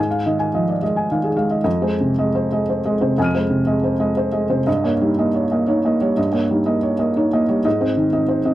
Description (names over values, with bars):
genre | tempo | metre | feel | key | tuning
neoclassical minimalist piano | 120 BPM | 3/4 | uneven beats, rubato | F minor | A4 = 444 Hz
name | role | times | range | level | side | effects
felt-muted upright piano | solo | 0.0-8.5 s | F2 to Eb7 | -16 LUFS | equal | none
room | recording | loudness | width
light reverb | dry, close 1970s-style studio recording | -16 LUFS | side -14 dB against mid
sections
0.0-1.6 A section; 1.6-8.5 B section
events
none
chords
0.0 Fm7/Ab; 1.6 Fm7; 4.7 Eb7/G; 7.6 Ab